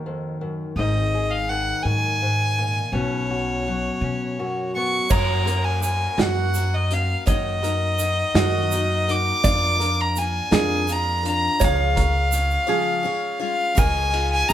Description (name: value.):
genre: indie folk with a building arrangement.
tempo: 55 BPM (dotted quarters).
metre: 6/8.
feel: straight.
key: Eb minor.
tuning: A4 = 441 Hz.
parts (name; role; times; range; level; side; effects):
fingerpicked steel-string acoustic guitar; accompaniment; 0.0-5.1 s; F2 to Ab4; -26 LUFS; left 2 dB; none.
upright bass; bass; 0.0-14.5 s; Ab1 to Eb3; -25 LUFS; equal; none.
rich fiddle; melody; 0.8-14.5 s; C#5 to D6; -23 LUFS; equal; none.
picked steel-string acoustic guitar; accompaniment; 5.1-14.5 s; Gb2 to Eb5; -29 LUFS; left 5 dB; none.
ukulele; arpeggios; 5.1-14.5 s; Gb4 to D5; -28 LUFS; right 8 dB; slapback echo.
loose indie drum kit; drums; 5.1-14.5 s; crash cymbal, hi-hat, kick drum, ride cymbal, snare drum; -24 LUFS; right 1 dB; none.
egg shaker; percussion; 5.1-14.5 s; none; -32 LUFS; right 10 dB; none.
room: moderate large studio reverb, RT60 1.1 s.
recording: band playing live in one room.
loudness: -19 LUFS.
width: side -11 dB against mid.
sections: 0.0-5.1 A section; 5.1-13.8 B section.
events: break 12.7-13.8.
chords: 0.0 Ebm; 0.8 Ab5; 2.9 Bsus2; 5.1 Gb; 7.3 Ebm/Gb; 9.4 Bb/F; 11.6 Db; 13.8 Dbadd9.